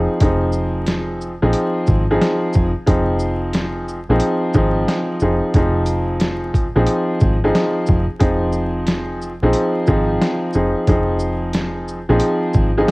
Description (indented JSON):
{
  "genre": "hip hop, boom-bap hip-hop",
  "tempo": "90 BPM",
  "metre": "4/4",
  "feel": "swing 63% on 16ths",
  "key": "F minor",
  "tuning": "A4 = 440 Hz",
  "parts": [
    { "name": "clear upright piano", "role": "accompaniment", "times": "0.0-12.9 s", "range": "F3 to Ab4", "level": "-18 LUFS", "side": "equal", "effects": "cassette tape, high-pass filter, low-pass filter" },
    { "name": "deep dub fingered electric bass", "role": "bass", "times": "0.0-12.8 s", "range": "F1 to Bb1", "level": "-20 LUFS", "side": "equal", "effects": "none" },
    { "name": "boom bap sampler-style drum kit", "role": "drums", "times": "0.2-12.9 s", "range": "hi-hat, kick drum, shaker, snare drum", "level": "-19 LUFS", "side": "equal", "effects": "vintage 12-bit sampler grit, cassette tape" }
  ],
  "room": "little or no reverb",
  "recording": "home recording on cassette, vinyl crackle",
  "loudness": "-15 LUFS",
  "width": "side -24 dB against mid",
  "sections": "0.0-12.9 A section",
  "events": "none",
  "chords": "0.0 Fm7",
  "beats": "| 0.21 0.88 1.54 2.21 | 2.88 3.54 4.21 4.88 | 5.54 6.21 6.88 7.54 | 8.21 8.88 9.54 10.21 | 10.88 11.54 12.21 12.88"
}